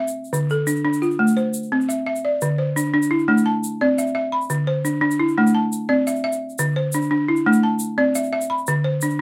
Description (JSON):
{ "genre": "west african traditional, West African string and xylophone music", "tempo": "115 BPM (dotted quarters)", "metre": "12/8", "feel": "straight", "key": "D dorian", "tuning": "A4 = 439 Hz", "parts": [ { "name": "balafon", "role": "arpeggios", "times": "0.0-9.2 s", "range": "D3 to B5", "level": "-20 LUFS", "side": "equal", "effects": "none" }, { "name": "egg shaker", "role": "percussion", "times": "0.1-9.1 s", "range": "none", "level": "-34 LUFS", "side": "equal", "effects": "none" } ], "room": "light reverb", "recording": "dry, close 1970s-style studio recording", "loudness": "-20 LUFS", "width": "mono", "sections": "0.0-2.4 A section; 2.4-9.2 B section", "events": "none", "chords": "0.3 Dm; 1.4 C; 2.4 D5; 3.5 C; 4.5 D5; 5.5 C; 6.6 D5; 7.6 C; 8.7 D5" }